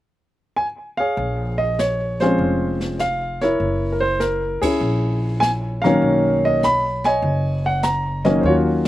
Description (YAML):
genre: jazz piano trio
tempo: 99 BPM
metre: 4/4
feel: swing 69% on 8ths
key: Bb minor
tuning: A4 = 442 Hz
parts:
  - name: warm grand piano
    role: melody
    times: 0.6-8.9 s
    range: Eb3 to B5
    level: -18 LUFS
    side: equal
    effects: slapback echo
  - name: upright bass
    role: bass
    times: 1.2-8.9 s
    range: F1 to Eb2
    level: -24 LUFS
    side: equal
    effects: none
  - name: jazz brush drum kit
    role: drums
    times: 1.2-8.9 s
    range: brushed snare drum, hi-hat, kick drum, ride cymbal, snare drum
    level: -29 LUFS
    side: equal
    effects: none
room: little or no reverb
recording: recorded outdoors, with no room sound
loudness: -17 LUFS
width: side -14 dB against mid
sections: 0.0-1.2 A section; 1.2-8.9 B section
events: band accent 4.5-4.8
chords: 0.0 N.C.; 1.2 Bbm9; 3.6 Gb9; 6.0 Bmaj9